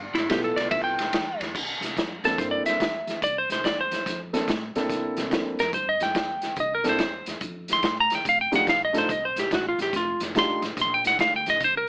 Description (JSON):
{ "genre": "electric blues shuffle", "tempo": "143 BPM", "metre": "4/4", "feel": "swing 65% on 8ths", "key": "C mixolydian", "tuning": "A4 = 441 Hz", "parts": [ { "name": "upright bass", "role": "bass", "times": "0.0-11.8 s", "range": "F1 to A2", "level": "-39 LUFS", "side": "equal", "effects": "none" }, { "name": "clean lap steel guitar", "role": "second line", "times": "0.1-11.9 s", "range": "E4 to C6", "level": "-23 LUFS", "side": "equal", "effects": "none" }, { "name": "vintage drum kit", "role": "drums", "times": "0.2-11.7 s", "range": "crash cymbal, hi-hat, kick drum, ride cymbal, snare drum", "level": "-28 LUFS", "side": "equal", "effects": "none" }, { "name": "dark grand piano", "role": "accompaniment", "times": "0.3-10.6 s", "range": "A3 to A4", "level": "-27 LUFS", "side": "equal", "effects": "none" } ], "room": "light reverb", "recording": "AM radio sound", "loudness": "-22 LUFS", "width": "side -31 dB against mid", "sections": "0.0-1.5 A section; 1.5-11.9 B section", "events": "electric slide guitar solo 1.5-11.9", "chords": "0.0 G13; 1.5 C13; 8.3 F13" }